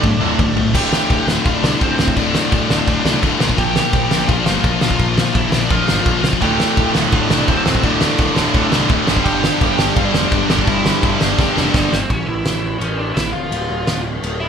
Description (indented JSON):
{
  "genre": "punk rock",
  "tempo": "169 BPM",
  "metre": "4/4",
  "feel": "straight",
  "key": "D minor",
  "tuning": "A4 = 443 Hz",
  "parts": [
    { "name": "smooth overdriven lead guitar", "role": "melody", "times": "0.0-14.5 s", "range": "Bb3 to G5", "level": "-23 LUFS", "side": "right 1 dB", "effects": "none" },
    { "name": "overdriven electric guitar", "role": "riff", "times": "0.0-11.9 s", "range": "D2 to Bb3", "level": "-20 LUFS", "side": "left 6 dB", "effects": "none" },
    { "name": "scooped high-gain guitar", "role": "riff", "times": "0.0-11.9 s", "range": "D2 to Bb4", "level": "-22 LUFS", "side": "left 1 dB", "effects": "distortion" },
    { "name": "tight distorted guitar", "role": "riff", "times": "0.0-0.7, 6.4-11.9 s", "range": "D2 to G3", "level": "-21 LUFS", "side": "right 8 dB", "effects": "distortion" },
    { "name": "fuzz picked electric bass", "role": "bass", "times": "0.0-14.5 s", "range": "D1 to C2", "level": "-24 LUFS", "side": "equal", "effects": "overdrive" },
    { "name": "loose indie drum kit", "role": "drums", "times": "0.0-14.3 s", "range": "crash cymbal, kick drum, ride cymbal, snare drum, toms", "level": "-18 LUFS", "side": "equal", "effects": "none" }
  ],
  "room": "moderate large studio reverb, RT60 1.3 s",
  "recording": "band playing live in one room, lossy compression artefacts",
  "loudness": "-14 LUFS",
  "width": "side -7 dB against mid",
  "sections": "0.7-12.1 A section; 12.1-14.5 B section",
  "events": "drum fill 0.0-0.7, 11.4-12.1; half time 12.1-14.5",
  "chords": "0.0 Dm; 3.4 Bb; 6.4 Dm; 9.1 Gm; 12.1 A; 13.3 Dm",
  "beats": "0.03 0.38 | 0.74 1.09 1.45 1.80 | 2.16 2.51 2.87 3.22 | 3.58 3.93 4.29 4.64 | 5.00 5.35 5.71 6.06 | 6.42 6.77 7.13 7.48 | 7.84 8.19 8.55 8.90 | 9.26 9.61 9.97 10.32 | 10.68 11.03 11.39 11.74 | 12.10 12.46 12.81 13.17 | 13.52 13.88 14.23"
}